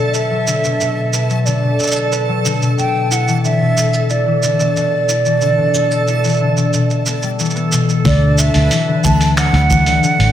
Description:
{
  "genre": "folktronica",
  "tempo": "91 BPM",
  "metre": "4/4",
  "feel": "straight",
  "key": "D major",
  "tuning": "A4 = 436 Hz",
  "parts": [
    { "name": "breathy concert flute", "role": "melody", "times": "0.0-10.3 s", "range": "D5 to A5", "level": "-18 LUFS", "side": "right 3 dB", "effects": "vintage 12-bit sampler grit, digital delay" },
    { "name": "concert harp", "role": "arpeggios", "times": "0.0-10.3 s", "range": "B2 to B4", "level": "-16 LUFS", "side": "left 3 dB", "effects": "digital delay" },
    { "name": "backwards swelling texture", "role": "texture", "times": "0.0-10.3 s", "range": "A4 to B5", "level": "-23 LUFS", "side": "left 1 dB", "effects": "built-in reverb" },
    { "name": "lo-fi sampler-style drum kit", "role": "drums", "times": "0.1-10.3 s", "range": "finger snaps, hi-hat, shaker", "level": "-22 LUFS", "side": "right 3 dB", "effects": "none" },
    { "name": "vintage muted fingered electric bass", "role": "bass", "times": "8.1-10.3 s", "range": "A1 to D2", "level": "-13 LUFS", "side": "equal", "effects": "none" },
    { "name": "kick drum", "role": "drums", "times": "8.1-9.8 s", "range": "none", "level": "-21 LUFS", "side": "equal", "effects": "none" }
  ],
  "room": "moderate concert hall reverb, RT60 2.5 s",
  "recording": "none",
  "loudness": "-12 LUFS",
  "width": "side -10 dB against mid",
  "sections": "0.0-8.1 A section; 8.1-10.3 B section",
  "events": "none",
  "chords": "0.0 Bm; 2.8 G6; 8.1 Dadd9"
}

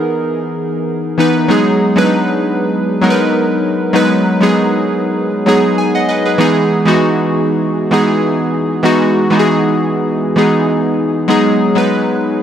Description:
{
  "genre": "afrobeats",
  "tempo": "98 BPM",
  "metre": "4/4",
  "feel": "swing 55% on 16ths",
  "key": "B major",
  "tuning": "A4 = 440 Hz",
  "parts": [
    { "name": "warm analog keys", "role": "solo", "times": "0.0-12.4 s", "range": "E3 to G#5", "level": "-11 LUFS", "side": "equal", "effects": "chorus" }
  ],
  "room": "light reverb",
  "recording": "none",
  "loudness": "-11 LUFS",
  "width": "side -9 dB against mid",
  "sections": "0.0-1.5 A section; 1.5-12.4 B section",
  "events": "none",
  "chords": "0.0 Emaj7; 1.5 B6; 6.4 Emaj7; 11.3 B6"
}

